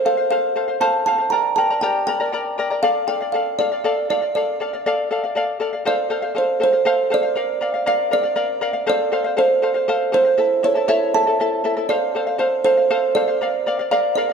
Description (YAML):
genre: andean folk, Andean ensemble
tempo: 79 BPM (dotted quarters)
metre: 6/8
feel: straight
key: unclear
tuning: A4 = 441 Hz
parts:
  - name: kalimba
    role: melody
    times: 0.0-14.3 s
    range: C5 to Bb5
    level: -19 LUFS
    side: right 3 dB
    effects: none
  - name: charango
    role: accompaniment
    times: 0.0-14.3 s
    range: E4 to Bb5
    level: -22 LUFS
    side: left 4 dB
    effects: none
room: moderate scoring stage reverb, RT60 2.1 s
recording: dark, warm production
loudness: -17 LUFS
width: side -6 dB against mid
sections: 0.0-5.9 A section; 5.9-14.3 B section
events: none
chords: 0.0 F; 1.3 Gm; 2.8 Dm; 5.9 F; 7.4 Bb; 8.9 F; 10.4 A; 11.9 F; 13.4 Bb